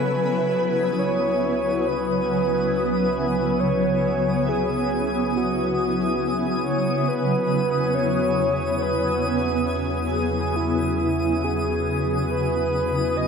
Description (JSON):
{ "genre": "ambient", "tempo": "69 BPM", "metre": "4/4", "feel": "straight", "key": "C# minor", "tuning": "A4 = 440 Hz", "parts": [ { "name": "breathy flute-like synth lead", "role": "melody", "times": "0.0-13.3 s", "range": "E4 to D#5", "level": "-24 LUFS", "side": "equal", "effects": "chorus, tape echo" }, { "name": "shimmering ambient pad", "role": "sustained chords", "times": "0.0-13.3 s", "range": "C#3 to G#5", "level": "-23 LUFS", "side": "equal", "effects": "chorus, built-in reverb, phaser" }, { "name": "muted felt-like synth keys", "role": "arpeggios", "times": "0.0-0.5 s", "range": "none", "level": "barely audible", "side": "none", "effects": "none" }, { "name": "round analog bass", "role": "bass", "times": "0.0-13.3 s", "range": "C#2 to E2", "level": "-33 LUFS", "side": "equal", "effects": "none" }, { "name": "twinkling granular texture", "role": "texture", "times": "0.0-13.3 s", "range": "B5 to D#6", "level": "-31 LUFS", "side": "left 1 dB", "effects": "built-in reverb" } ], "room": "wet huge ambient reverb, RT60 8.9 s", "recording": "none", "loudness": "-20 LUFS", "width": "side -6 dB against mid", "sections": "0.1-13.3 A section", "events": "fade-in on analog synth bass 0.1-13.3", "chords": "0.1 C#m11; 7.1 Emaj7" }